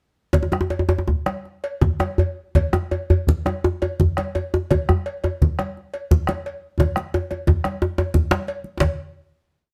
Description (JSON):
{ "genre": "west african traditional, West African drum ensemble", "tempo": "108-126 BPM (dotted quarters)", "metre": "12/8", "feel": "straight", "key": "none", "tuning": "none", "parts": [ { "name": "bombo", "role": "percussion", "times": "0.3-9.0 s", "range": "none", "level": "-24 LUFS", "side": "equal", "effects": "none" }, { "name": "congas", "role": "percussion", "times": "0.3-9.0 s", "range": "none", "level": "-28 LUFS", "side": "equal", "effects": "none" }, { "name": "cowbell", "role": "percussion", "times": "0.3-9.0 s", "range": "none", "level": "-32 LUFS", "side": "equal", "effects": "none" }, { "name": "djembe", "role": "percussion", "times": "0.3-9.0 s", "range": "none", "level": "-28 LUFS", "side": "equal", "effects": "none" }, { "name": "djembe", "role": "percussion", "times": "0.3-9.0 s", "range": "none", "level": "-23 LUFS", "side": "equal", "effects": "none" } ], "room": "light reverb", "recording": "none", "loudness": "-22 LUFS", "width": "mono", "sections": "0.3-8.8 A section; 8.8-9.7 final hit", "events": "speeding up 0.3-9.7; drum fill 6.8-8.8", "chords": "none" }